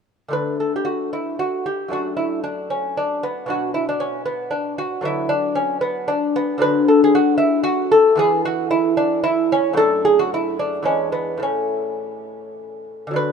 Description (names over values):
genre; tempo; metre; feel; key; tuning
classical, baroque-style dance for lute; 114 BPM; 3/4; rubato; D major; A4 = 440 Hz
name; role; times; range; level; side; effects
lute; solo; 0.3-13.3 s; E2 to B4; -18 LUFS; equal; none
room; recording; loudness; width
moderate huge ambient reverb, RT60 6.1 s; minimal, uncompressed stereo recording; -17 LUFS; side -6 dB against mid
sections
0.3-13.2 A section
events
none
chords
0.3 D5; 1.9 D/F#; 3.5 Bm; 5.1 Bm/D; 6.6 D; 8.2 E5; 9.8 D/F#; 10.9 E7; 11.4 N.C.